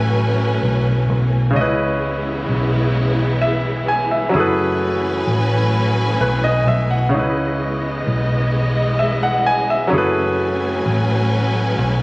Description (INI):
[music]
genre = R&B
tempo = 43 BPM (dotted quarters)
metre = 6/8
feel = straight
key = C# minor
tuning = A4 = 441 Hz
[part]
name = warm baby grand piano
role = accompaniment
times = 0.0-12.0 s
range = C#3 to G#5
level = -20 LUFS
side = equal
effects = none
[part]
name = warm studio string section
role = sustained chords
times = 0.0-12.0 s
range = C#3 to G#5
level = -22 LUFS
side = equal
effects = none
[part]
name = vintage muted fingered electric bass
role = bass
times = 0.0-12.0 s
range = F#1 to C#2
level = -19 LUFS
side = equal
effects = none
[sound]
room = light reverb, studio reverb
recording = recorded on a phone in the room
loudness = -15 LUFS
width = side -25 dB against mid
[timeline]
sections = 0.0-12.0 A section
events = none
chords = 0.0 F#m11; 1.5 C#m7; 4.3 F#m11; 7.1 C#m7; 9.9 F#m11